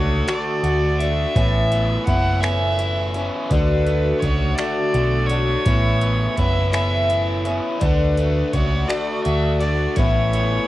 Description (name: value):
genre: folk rock and heartland rock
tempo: 56 BPM (dotted quarters)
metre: 6/8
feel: straight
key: D major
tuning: A4 = 444 Hz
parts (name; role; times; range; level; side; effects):
- rich fiddle; melody; 0.0-10.7 s; B4 to F#5; -25 LUFS; equal; cassette tape
- picked twelve-string acoustic guitar; accompaniment; 0.0-10.7 s; A2 to F#4; -24 LUFS; left 2 dB; cassette tape
- raw garage guitar; riff; 0.0-10.7 s; A2 to F#4; -27 LUFS; right 1 dB; overdrive, phaser, cassette tape
- hollow-body short-scale picked electric bass; bass; 0.0-10.6 s; F#1 to D2; -21 LUFS; equal; none
- booming analog drum machine; drums; 0.3-10.5 s; finger snaps, hi-hat, kick drum; -24 LUFS; equal; overdrive
room: moderate studio reverb, RT60 0.5 s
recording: home recording on cassette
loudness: -17 LUFS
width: side -16 dB against mid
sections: 0.0-10.7 A section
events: none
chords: 0.0 D; 1.4 Aadd9; 3.5 D; 5.7 Aadd9; 7.8 D; 10.0 Aadd9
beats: 0.29 | 1.37 2.44 | 3.52 4.59 | 5.67 6.74 | 7.82 8.89 | 9.97